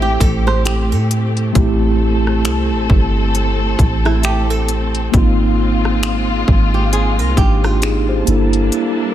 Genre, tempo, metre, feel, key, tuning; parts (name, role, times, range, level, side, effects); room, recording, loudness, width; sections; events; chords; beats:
contemporary R&B; 67 BPM; 4/4; swing 58% on 16ths; A4 = 439 Hz
mellow tine electric piano; accompaniment; 0.0-9.1 s; A3 to C5; -19 LUFS; right 1 dB; medium stereo tremolo
warm studio string section; sustained chords; 0.0-9.1 s; G3 to A5; -23 LUFS; left 3 dB
flamenco guitar; arpeggios; 0.0-8.2 s; E4 to C5; -23 LUFS; right 6 dB; dub echo
soft 808-style bass; bass; 0.0-8.7 s; G1 to A2; -16 LUFS; equal
trap drum kit; drums; 0.2-9.0 s; finger snaps, hi-hat, kick drum, rim click; -17 LUFS; equal
little or no reverb; echo-heavy mix; -13 LUFS; side -12 dB against mid
0.0-9.1 A section
break 8.7-9.1
0.0 Am7; 5.1 Ab69; 8.3 Gm69
0.66 | 1.55 2.45 3.35 4.24 | 5.14 6.03 6.93 7.82 | 8.72